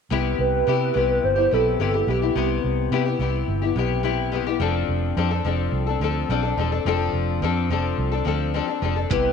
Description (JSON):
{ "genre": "indie pop, bedroom pop", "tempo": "107 BPM", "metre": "4/4", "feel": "straight", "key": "C major", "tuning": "A4 = 439 Hz", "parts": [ { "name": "nylon-string guitar", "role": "accompaniment", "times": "0.1-9.3 s", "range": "C3 to A4", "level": "-23 LUFS", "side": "left 10 dB", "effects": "wide subtle chorus, warbly pitch drift" }, { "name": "vintage muted fingered electric bass", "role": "bass", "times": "0.1-9.3 s", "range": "E1 to C3", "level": "-24 LUFS", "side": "right 3 dB", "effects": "none" }, { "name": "hollow clarinet-like synth lead", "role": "melody", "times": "0.4-2.6, 9.1-9.3 s", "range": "G4 to C5", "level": "-22 LUFS", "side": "right 2 dB", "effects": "analog chorus, slapback echo" }, { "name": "lo-fi sampler-style drum kit", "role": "drums", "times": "9.1-9.2 s", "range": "hi-hat, kick drum", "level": "-26 LUFS", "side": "right 8 dB", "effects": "none" } ], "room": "light reverb, digital ambience", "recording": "1960s-style stereo with parts hard left and right", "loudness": "-20 LUFS", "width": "side -6 dB against mid", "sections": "0.1-9.3 A section", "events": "none", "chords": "0.1 Cmaj7; 4.6 F6" }